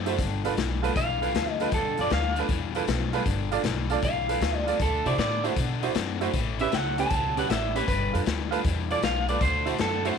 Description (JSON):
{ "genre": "electric blues shuffle", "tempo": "156 BPM", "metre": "4/4", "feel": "swing 68% on 8ths", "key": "unclear", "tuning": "A4 = 441 Hz", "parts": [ { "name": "overdriven semi-hollow guitar", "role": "riff", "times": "0.0-10.2 s", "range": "G2 to C4", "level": "-32 LUFS", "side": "left 12 dB", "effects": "none" }, { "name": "upright bass", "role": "bass", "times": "0.0-10.1 s", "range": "G1 to C3", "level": "-30 LUFS", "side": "equal", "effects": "none" }, { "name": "warm upright piano", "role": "accompaniment", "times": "0.1-10.1 s", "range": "C#4 to D5", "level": "-31 LUFS", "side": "right 14 dB", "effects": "none" }, { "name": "raw garage drum kit", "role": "drums", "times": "0.1-10.1 s", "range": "hi-hat, kick drum, snare drum", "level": "-30 LUFS", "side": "left 4 dB", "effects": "none" }, { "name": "electric guitar through a small old amp", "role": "melody", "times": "1.0-10.2 s", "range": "A4 to A5", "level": "-29 LUFS", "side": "right 1 dB", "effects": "none" } ], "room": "light reverb, small room ambience", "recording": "1960s-style stereo with parts hard left and right", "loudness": "-24 LUFS", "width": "side -6 dB against mid", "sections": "0.0-10.2 A section", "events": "none", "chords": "0.2 G9; 4.8 D9; 6.3 A9; 7.9 G9; 9.4 D9" }